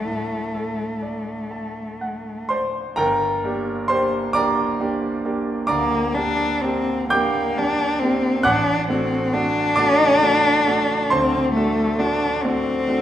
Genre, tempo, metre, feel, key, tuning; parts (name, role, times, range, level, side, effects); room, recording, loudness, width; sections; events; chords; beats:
classical, romantic duo for cello and grand piano; 40-46 BPM (dotted quarters); 12/8; rubato; G minor; A4 = 442 Hz
rich cello; melody; 0.0-13.0 s; A3 to D4; -20 LUFS; left 2 dB
bright concert grand piano; accompaniment; 0.0-13.0 s; G1 to G6; -21 LUFS; right 2 dB
wet recital hall reverb, RT60 1.7 s; recorded in a church or concert hall; -18 LUFS; side -11 dB against mid
0.0-3.0 A section; 3.0-13.0 A section
0.0 D; 3.0 Gm; 8.5 D7/A
0.08 1.53 | 2.99 4.34 5.68 7.11 | 8.45 9.78 11.11 12.43